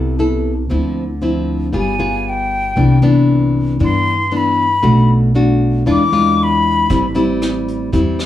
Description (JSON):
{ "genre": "bossa nova", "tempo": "116 BPM", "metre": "4/4", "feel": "straight", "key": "A minor", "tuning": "A4 = 436 Hz", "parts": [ { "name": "nylon-string guitar", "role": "accompaniment", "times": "0.0-8.3 s", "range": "G2 to A4", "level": "-16 LUFS", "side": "left 1 dB", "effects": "none" }, { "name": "upright bass", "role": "bass", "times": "0.0-8.3 s", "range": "G1 to G2", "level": "-18 LUFS", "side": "equal", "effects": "none" }, { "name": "hollow concert flute", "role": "melody", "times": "1.8-7.2 s", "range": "G5 to D6", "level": "-16 LUFS", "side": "left 3 dB", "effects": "plate reverb" }, { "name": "vintage brush drum kit", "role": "drums", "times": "6.9-8.3 s", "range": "hi-hat, kick drum, rim click", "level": "-23 LUFS", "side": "equal", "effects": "none" } ], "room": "wet studio ambience, RT60 0.5 s", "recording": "heard from further back in the room, small room ambience", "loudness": "-12 LUFS", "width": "side -12 dB against mid", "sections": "0.0-8.3 A section", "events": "flute solo 0.0-8.3", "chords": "0.0 Fmaj7#11 (rootless); 0.7 Dm9; 1.7 G7b9; 2.8 Cmaj9; 4.8 Bm7; 5.9 E7b9; 6.9 Am7" }